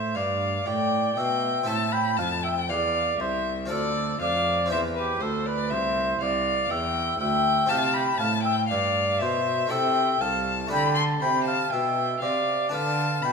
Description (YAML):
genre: classical, baroque-style sonata movement with continuo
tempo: 60 BPM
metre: 3/4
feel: straight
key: C major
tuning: A4 = 440 Hz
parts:
  - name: warm violin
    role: melody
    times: 0.0-13.3 s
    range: B4 to C6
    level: -26 LUFS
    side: left 7 dB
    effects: none
  - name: mellow oboe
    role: second line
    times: 0.0-13.3 s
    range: G4 to A5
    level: -27 LUFS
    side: right 4 dB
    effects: none
  - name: harpsichord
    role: accompaniment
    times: 0.0-13.3 s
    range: C2 to B4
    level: -34 LUFS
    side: left 1 dB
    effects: none
  - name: rich cello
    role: bass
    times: 0.0-13.3 s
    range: C2 to D3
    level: -30 LUFS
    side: right 3 dB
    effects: none
room: wet recital hall reverb, RT60 1.6 s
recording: minimal, uncompressed stereo recording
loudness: -22 LUFS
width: side -5 dB against mid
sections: 0.0-13.3 A section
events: none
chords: 0.0 G; 1.7 Am; 3.7 Dm7; 4.7 C; 9.7 Am/C; 10.7 D5; 12.7 Bdim/D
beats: 0.66 | 1.67 2.69 3.70 | 4.71 5.71 6.70 | 7.70 8.71 9.71 | 10.72 11.72 12.73